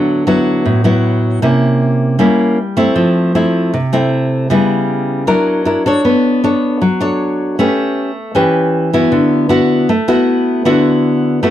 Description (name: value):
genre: bossa nova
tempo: 156 BPM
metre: 4/4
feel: straight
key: D major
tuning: A4 = 441 Hz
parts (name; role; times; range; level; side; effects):
- nylon-string guitar; solo; 0.0-11.5 s; A2 to C#5; -11 LUFS; equal; none
room: moderate small room ambience, RT60 0.5 s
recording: none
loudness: -11 LUFS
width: side -12 dB against mid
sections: 0.0-11.5 A section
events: none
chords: 0.0 D69; 1.4 C7b9; 3.0 Fmaj7; 4.5 C#m7b5; 5.3 F#7b13; 6.0 Bm9; 7.6 A9; 9.1 D69